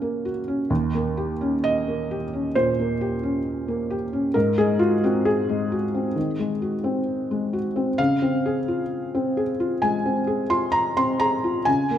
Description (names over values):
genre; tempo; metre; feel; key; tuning
neoclassical minimalist piano; 65 BPM; 4/4; rubato; Db major; A4 = 440 Hz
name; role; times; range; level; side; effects
felt-muted upright piano; solo; 0.0-12.0 s; Eb2 to C6; -21 LUFS; equal; none
room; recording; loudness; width
moderate concert hall reverb, RT60 2.4 s; minimal, uncompressed stereo recording; -21 LUFS; side -10 dB against mid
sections
0.0-12.0 A section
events
none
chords
0.0 Gb/Db; 0.7 Eb7; 4.3 Ab7; 8.0 Dbmaj7